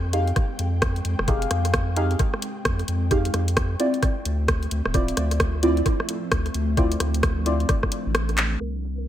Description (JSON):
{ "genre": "UK garage, two-step garage", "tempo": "131 BPM", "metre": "4/4", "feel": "swing 62% on 16ths", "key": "unclear", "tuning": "A4 = 440 Hz", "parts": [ { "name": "ethereal airy pad", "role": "sustained chords", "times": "0.0-9.1 s", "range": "F3 to G5", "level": "-34 LUFS", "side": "equal", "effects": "ensemble chorus, built-in reverb, tremolo, sidechain pumping" }, { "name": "saturated sub bass", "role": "bass", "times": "0.0-9.1 s", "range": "D1 to F2", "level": "-24 LUFS", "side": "equal", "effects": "none" }, { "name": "deep mellow chord stab", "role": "stabs", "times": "0.1-7.5 s", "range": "C4 to F5", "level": "-26 LUFS", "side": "equal", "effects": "chorus, phaser, cassette tape, tape echo" }, { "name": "garage drum kit", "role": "drums", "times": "0.1-9.0 s", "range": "crash cymbal, handclaps, hi-hat, rim click, shaker", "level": "-27 LUFS", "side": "equal", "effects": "low-pass filter on hats, low-pass filter on snare, low-pass filter on cymbals, low-pass filter on perc, analog delay" }, { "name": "electronic kick drum", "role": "drums", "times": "0.4-7.9 s", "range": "none", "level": "-24 LUFS", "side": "equal", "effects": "none" }, { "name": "hollow square pluck", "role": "melody", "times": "8.6-9.1 s", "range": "Bb4", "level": "-40 LUFS", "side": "right 3 dB", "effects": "analog chorus, dub echo" } ], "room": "light reverb, digital ambience", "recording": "echo-heavy mix, low-pass filter", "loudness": "-21 LUFS", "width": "side -12 dB against mid", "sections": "0.0-8.6 A section", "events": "kick drops out 8.1-8.6; drum fill 8.4", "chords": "0.0 Fm9; 3.8 Dm9" }